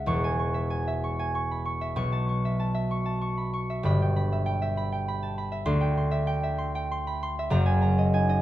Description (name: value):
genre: classical, solo harp piece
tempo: 97 BPM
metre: 3/4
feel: uneven beats, rubato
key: unclear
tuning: A4 = 440 Hz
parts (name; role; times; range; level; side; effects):
- concert harp; solo; 0.0-8.4 s; E1 to C#6; -24 LUFS; equal; none
room: wet recital hall reverb, RT60 1.7 s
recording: none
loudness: -25 LUFS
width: side -14 dB against mid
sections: 0.1-8.4 A section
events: none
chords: 0.1 E6; 2.0 B9sus4; 3.9 G6; 5.7 D9sus4; 7.5 F#69